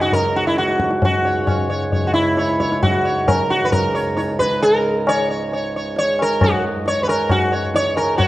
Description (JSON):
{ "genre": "indian classical, Hindustani", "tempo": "134 BPM", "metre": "4/4", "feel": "straight", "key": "C# raga bageshri", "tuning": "A4 = 441 Hz", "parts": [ { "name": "sitar", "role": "melody", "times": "0.0-8.3 s", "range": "E4 to C#5", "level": "-18 LUFS", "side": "equal", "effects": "none" }, { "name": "pedal harmonium", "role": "drone", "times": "0.0-8.3 s", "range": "C#2 to G#2", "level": "-25 LUFS", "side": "right 1 dB", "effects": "none" }, { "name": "tabla", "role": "percussion", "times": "0.1-8.3 s", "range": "none", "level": "-21 LUFS", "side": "left 2 dB", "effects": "none" } ], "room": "wet recital hall reverb, RT60 1.4 s", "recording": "worn, warbling old tape, cassette tape, warbly pitch drift", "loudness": "-16 LUFS", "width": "side -16 dB against mid", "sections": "0.0-8.2 A section", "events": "none", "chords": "none" }